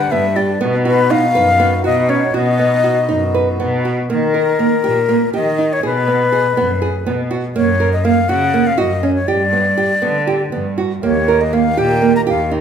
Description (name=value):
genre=contemporary instrumental, chamber music in an uneven meter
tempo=242 BPM (eighths)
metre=7/8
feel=straight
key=unclear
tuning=A4 = 441 Hz
part: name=breathy concert flute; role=melody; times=0.0-12.5 s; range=Bb4 to Bb5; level=-17 LUFS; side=left 5 dB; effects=none
part: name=pedal harmonium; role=sustained chords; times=0.0-4.1, 11.0-12.6 s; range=Eb3 to B4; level=-22 LUFS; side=equal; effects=none
part: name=rich cello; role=bass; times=0.0-12.6 s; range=Eb2 to Eb3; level=-19 LUFS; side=right 1 dB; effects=none
part: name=nylon-string guitar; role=arpeggios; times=0.1-12.6 s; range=Bb3 to B4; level=-18 LUFS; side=right 5 dB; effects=none
room=moderate recital hall reverb, RT60 1.6 s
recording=minimal, uncompressed stereo recording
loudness=-13 LUFS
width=side -8 dB against mid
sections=0.0-4.1 A section; 4.1-12.6 B section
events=none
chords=0.0 G; 0.6 B; 4.1 Eb; 5.8 B5; 7.6 Gb; 9.3 G; 11.0 Eb